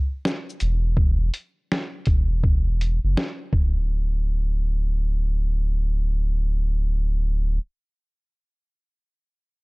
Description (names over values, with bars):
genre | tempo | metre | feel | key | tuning
lo-fi hip hop | 82 BPM | 4/4 | swing 63% on 16ths | D major | A4 = 437 Hz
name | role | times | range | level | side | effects
lo-fi sampler-style drum kit | drums | 0.3-3.7 s | hi-hat, kick drum, shaker, snare drum | -22 LUFS | equal | none
soft dub sub bass | bass | 0.6-7.6 s | D1 to F#1 | -21 LUFS | equal | tube saturation
room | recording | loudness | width
little or no reverb | dry, gritty hardware recording, transformer saturation | -21 LUFS | side -35 dB against mid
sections
0.0-3.9 A section; 3.9-6.8 B section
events
none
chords
none